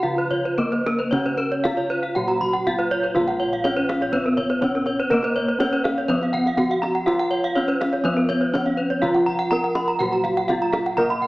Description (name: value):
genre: Balinese gamelan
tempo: 123 BPM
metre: 4/4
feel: straight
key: Bb pelog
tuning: A4 = 441 Hz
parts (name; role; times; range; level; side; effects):
- gamelan-type bronze metallophone; melody; 0.0-11.3 s; Bb3 to Bb4; -24 LUFS; equal; slapback echo
- gamelan-type bronze metallophone; accompaniment; 0.0-11.3 s; Db3 to Cb4+35c; -32 LUFS; equal; none
- gamelan-type bronze metallophone; arpeggios; 0.0-11.3 s; Bb4 to Cb6+35c; -26 LUFS; left 1 dB; none
- gamelan-type bossed gongs; bass; 0.0-11.3 s; Bb1 to Bb4; -27 LUFS; equal; none
- gamelan-type bronze metallophone; arpeggios; 0.2-11.2 s; Bb4 to Cb6+35c; -26 LUFS; right 2 dB; none
- kendang; percussion; 0.3-11.2 s; none; -33 LUFS; right 1 dB; none
room: moderate recital hall reverb, RT60 1.6 s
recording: small speaker sound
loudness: -19 LUFS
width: side -19 dB against mid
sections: 0.0-3.2 A section; 3.2-11.3 B section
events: none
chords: none